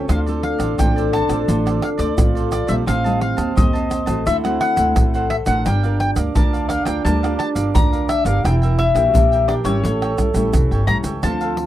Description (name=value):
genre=samba and choro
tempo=86 BPM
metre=4/4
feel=straight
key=D minor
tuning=A4 = 444 Hz
part: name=warm trombone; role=second line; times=0.0-11.7 s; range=C4 to A4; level=-25 LUFS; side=right 8 dB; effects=none
part: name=cavaquinho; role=accompaniment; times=0.0-11.6 s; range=D4 to A5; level=-29 LUFS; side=right 3 dB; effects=none
part: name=nylon-string guitar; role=accompaniment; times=0.0-11.7 s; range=A2 to Bb4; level=-26 LUFS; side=left 5 dB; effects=none
part: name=upright bass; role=bass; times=0.0-11.7 s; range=E1 to Eb2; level=-21 LUFS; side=equal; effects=none
part: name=mandolin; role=melody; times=0.1-11.7 s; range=C#5 to Bb5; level=-22 LUFS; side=left 4 dB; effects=none
part: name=tube shaker, surdo, pandeiro and tamborim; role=percussion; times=0.1-11.7 s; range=none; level=-20 LUFS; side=right 1 dB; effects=none
room=light reverb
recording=dry, close 1970s-style studio recording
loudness=-16 LUFS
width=side -13 dB against mid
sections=0.1-11.7 A section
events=none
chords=0.1 Dm7; 2.9 Am7b5; 4.3 D7; 5.7 Gm7; 8.4 Em7b5; 9.8 A7